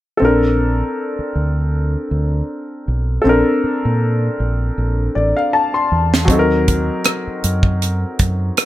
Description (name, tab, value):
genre	R&B, neo-soul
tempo	79 BPM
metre	4/4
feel	swing 56% on 16ths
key	Bb major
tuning	A4 = 440 Hz
part	warm concert grand piano	accompaniment	0.2-8.7 s	Gb3 to C6	-18 LUFS	left 1 dB	none
part	deep dub fingered electric bass	bass	0.2-8.5 s	A1 to Bb2	-18 LUFS	equal	none
part	tight funk drum kit	drums	6.1-8.7 s	hi-hat, kick drum, rim click, snare drum	-15 LUFS	right 1 dB	none
room	little or no reverb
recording	none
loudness	-15 LUFS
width	side -14 dB against mid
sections	0.2-8.7 A section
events	drum fill 4.8-6.3; grand piano fill 4.8-6.3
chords	0.2 Bbmaj9; 6.3 Ebm6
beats	| 0.21 0.97 1.73 2.48 | 3.25 4.00 4.76 5.52 | 6.28 7.04 7.80 8.56